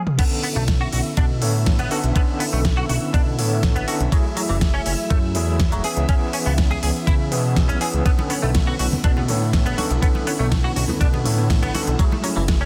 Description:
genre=nu-disco, nu disco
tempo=122 BPM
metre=4/4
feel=straight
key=B dorian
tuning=A4 = 444 Hz
part: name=pop drum kit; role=drums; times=0.1-12.6 s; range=crash cymbal, hi-hat, ride cymbal, snare drum, toms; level=-29 LUFS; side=equal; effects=studio reverb
part: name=overdriven tine electric piano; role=accompaniment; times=0.2-12.7 s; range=D3 to C#5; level=-28 LUFS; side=equal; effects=medium tremolo, slapback echo
part: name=string machine, full ensemble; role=sustained chords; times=0.2-12.7 s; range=E4 to E5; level=-35 LUFS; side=equal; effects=ensemble chorus, sidechain pumping
part: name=direct-recorded clean electric guitar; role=riff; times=0.2-12.7 s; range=E3 to G#4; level=-32 LUFS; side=equal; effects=ensemble chorus, low-pass filter, slapback echo
part: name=electronic kick drum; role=drums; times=0.2-12.6 s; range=none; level=-21 LUFS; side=equal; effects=studio reverb
part: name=fat analog bass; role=bass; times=0.6-12.7 s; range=E1 to C#3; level=-25 LUFS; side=equal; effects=tube saturation
part: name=analog pluck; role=arpeggios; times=8.1-12.7 s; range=G#3 to C#4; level=-34 LUFS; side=equal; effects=none
part: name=congas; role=percussion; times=8.2-12.6 s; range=none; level=-33 LUFS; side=equal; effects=none
room=digital ambience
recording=dense, heavily limited modern master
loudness=-20 LUFS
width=mono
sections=0.2-12.7 A section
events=break 0.0; drum fill 0.0; drop 0.2-12.7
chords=0.2 Bm9; 4.1 F#m9; 5.8 C#m7; 8.1 Bm9; 12.0 F#m9

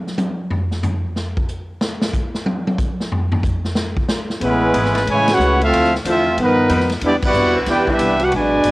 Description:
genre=jazz, big band swing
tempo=184 BPM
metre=4/4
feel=swing 64% on 8ths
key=unclear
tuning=A4 = 440 Hz
part: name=swinging big-band drum kit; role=drums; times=0.1-8.7 s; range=crash cymbal, hi-hat, kick drum, ride cymbal, snare drum, toms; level=-21 LUFS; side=equal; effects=cassette tape
part: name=clear trumpet section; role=melody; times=4.4-8.7 s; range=G#3 to G#5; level=-17 LUFS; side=equal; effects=cassette tape
part: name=clear trombone section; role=second line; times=4.4-8.7 s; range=B2 to G4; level=-18 LUFS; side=right 1 dB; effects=cassette tape
part: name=vintage hollow-body jazz guitar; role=accompaniment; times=4.4-8.7 s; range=G2 to B4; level=-26 LUFS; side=left 3 dB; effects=cassette tape
part: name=upright bass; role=bass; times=4.4-8.7 s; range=F#1 to G2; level=-24 LUFS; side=equal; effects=none
part: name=clear saxophone section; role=sustained chords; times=4.9-8.0 s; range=E3 to C5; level=-26 LUFS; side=equal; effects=cassette tape
room=light reverb, small room ambience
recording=home recording on cassette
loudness=-15 LUFS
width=side -20 dB against mid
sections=0.0-4.4 A section; 4.4-8.7 B section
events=drum solo 0.0-4.4; band accent 5.2, 7.2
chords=0.0 N.C.; 4.4 Amaj9; 5.7 Dm9; 6.4 G7alt; 7.0 Cmaj9

